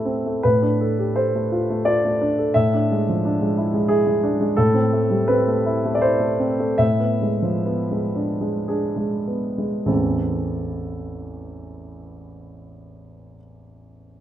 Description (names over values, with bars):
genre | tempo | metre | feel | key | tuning
classical, romantic character piece for solo piano | 46-91 BPM | 3/4 | rubato | A minor | A4 = 440 Hz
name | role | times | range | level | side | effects
warm grand piano | solo | 0.0-14.2 s | A1 to E5 | -19 LUFS | equal | none
room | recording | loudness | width
light reverb | close, detailed microphones | -18 LUFS | side -11 dB against mid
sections
0.4-9.9 A section; 9.9-14.2 B section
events
slowing down 3.6-9.9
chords
0.4 Dm/A; 2.5 E7/A; 4.6 Am; 6.8 E7/A; 9.9 Am